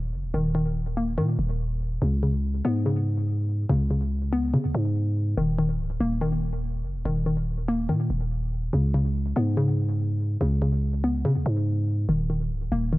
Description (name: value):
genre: hip hop, drill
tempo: 143 BPM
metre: 4/4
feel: half-time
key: unclear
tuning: A4 = 440 Hz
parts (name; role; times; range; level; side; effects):
- hollow square pluck; arpeggios; 0.0-13.0 s; Db3 to Cb4; -26 LUFS; left 1 dB; chorus, low-pass filter, digital delay
- growling 808-style bass; bass; 0.0-13.0 s; Db1 to Db3; -25 LUFS; equal; none
room: little or no reverb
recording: none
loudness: -23 LUFS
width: side -19 dB against mid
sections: 0.0-12.1 A section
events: none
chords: 0.0 Eb5; 2.0 Db5; 5.4 Eb5; 8.7 Db5; 12.1 Eb5